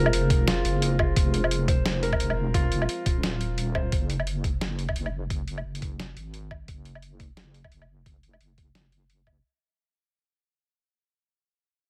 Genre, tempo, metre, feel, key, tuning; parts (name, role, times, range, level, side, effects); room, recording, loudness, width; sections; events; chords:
half-time drum and bass; 174 BPM; 4/4; swing 58% on 16ths, half-time; A4 = 439 Hz
dark analog pad; sustained chords; 0.0-9.4 s; F4 to Db5; -38 LUFS; equal; chorus, sidechain pumping
felt-muted upright piano; arpeggios; 0.0-3.9 s; F4 to C5; -33 LUFS; equal; dub echo
deep soft wobble bass; bass; 0.0-9.4 s; Eb1 to Ab1; -31 LUFS; equal; chorus, tube saturation
boom bap sampler-style drum kit; drums; 0.1-9.3 s; hi-hat, snare drum, woodblock; -32 LUFS; equal
electronic kick drum; drums; 0.3-9.3 s; -28 LUFS; equal
little or no reverb; -26 LUFS; mono
0.0-9.4 A section
fade-out 0.0-9.4
0.0 Fm; 3.9 Gb